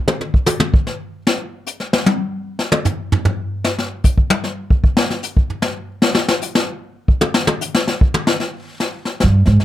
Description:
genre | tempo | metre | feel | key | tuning
jazz piano trio | 151 BPM | 3/4 | swing 64% on 8ths | unclear | A4 = 438 Hz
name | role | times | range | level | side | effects
jazz brush drum kit | drums | 0.1-9.6 s | brushed snare drum, hi-hat, kick drum, snare drum, toms | -16 LUFS | left 1 dB | none
upright bass | bass | 9.2-9.6 s | G2 to Ab2 | -10 LUFS | right 1 dB | none
room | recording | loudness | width
light reverb | close, detailed microphones | -16 LUFS | side -13 dB against mid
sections
0.0-8.4 A section; 8.4-9.6 A section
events
drum solo 0.0-8.4; upright bass solo 8.4-9.6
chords
none

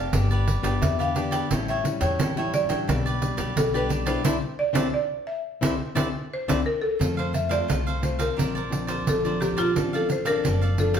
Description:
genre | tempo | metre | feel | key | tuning
samba and choro | 87 BPM | 4/4 | straight | F major | A4 = 439 Hz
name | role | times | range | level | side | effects
buzzing marimba with medium hard mallets | melody | 0.0-11.0 s | F4 to G5 | -27 LUFS | equal | none
cavaquinho | accompaniment | 0.0-11.0 s | D4 to A5 | -32 LUFS | right 3 dB | none
nylon-string guitar | accompaniment | 0.0-11.0 s | A2 to G4 | -30 LUFS | left 3 dB | none
upright bass | bass | 0.0-11.0 s | F1 to F2 | -28 LUFS | equal | none
pandeiro | percussion | 0.1-11.0 s | none | -28 LUFS | right 2 dB | none
room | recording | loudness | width
wet studio reverb, RT60 1.0 s | heard from further back in the room | -22 LUFS | side -8 dB against mid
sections
0.0-7.0 A section; 7.0-11.0 B section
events
band accent 4.3-7.0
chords
0.1 G; 1.5 A7; 2.9 G/B; 4.3 Cadd9; 7.0 F; 8.4 Bbadd9; 9.8 F6/A

